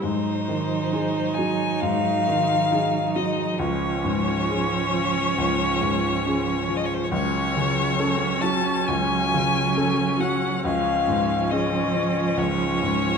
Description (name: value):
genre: classical, slow romantic movement for piano quartet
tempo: 68 BPM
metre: 4/4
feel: rubato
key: Db major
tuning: A4 = 440 Hz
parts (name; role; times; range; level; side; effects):
- rich violin; melody; 0.0-13.2 s; C5 to A5; -25 LUFS; left 5 dB; none
- rich cello; second line; 0.0-13.2 s; F3 to Gb3; -28 LUFS; right 9 dB; none
- clear baby grand piano; accompaniment; 0.0-13.2 s; Db2 to A4; -26 LUFS; left 3 dB; none
- warm viola; accompaniment; 0.0-13.2 s; Db4 to Eb4; -28 LUFS; right 4 dB; none
room: moderate recital hall reverb, RT60 1.5 s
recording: close, detailed microphones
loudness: -20 LUFS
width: side -6 dB against mid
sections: 0.0-13.2 A section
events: none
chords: 0.0 Ab7; 3.6 Db; 7.1 Gbm/Db; 10.6 Db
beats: | 0.03 0.91 1.81 2.71 | 3.60 4.48 5.37 6.25 | 7.12 7.99 8.87 9.76 | 10.65 11.51 12.39